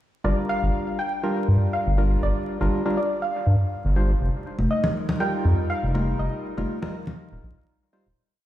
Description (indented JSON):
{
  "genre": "deep house",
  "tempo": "121 BPM",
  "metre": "4/4",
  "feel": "swing 54% on 16ths",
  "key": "G minor",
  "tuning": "A4 = 440 Hz",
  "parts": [
    { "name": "soft round pluck", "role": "melody", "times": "0.2-7.6 s", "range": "D5 to G5", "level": "-29 LUFS", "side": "equal", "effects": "lush chorus, ping-pong delay" },
    { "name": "percussive organ stab", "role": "stabs", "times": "0.2-8.1 s", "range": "G3 to C5", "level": "-28 LUFS", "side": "equal", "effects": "chorus, dub echo" },
    { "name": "round analog bass", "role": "bass", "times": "0.2-8.1 s", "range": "Eb1 to G2", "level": "-20 LUFS", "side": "equal", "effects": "none" },
    { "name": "warbly tape-like pad", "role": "sustained chords", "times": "4.2-8.1 s", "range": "G3 to Bb4", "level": "-35 LUFS", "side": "left 1 dB", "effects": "chorus, built-in reverb" },
    { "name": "congas", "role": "percussion", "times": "4.6-7.2 s", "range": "none", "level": "-28 LUFS", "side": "left 1 dB", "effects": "none" }
  ],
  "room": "light reverb, digital ambience",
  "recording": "played on a big sound system in a bare room, stone room reverb, vinyl crackle",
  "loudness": "-21 LUFS",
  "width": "side -13 dB against mid",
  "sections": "0.2-8.2 drop",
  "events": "drop 0.2-8.2; fade-out 5.5-8.2",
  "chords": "0.2 Gm7; 4.2 F9sus4"
}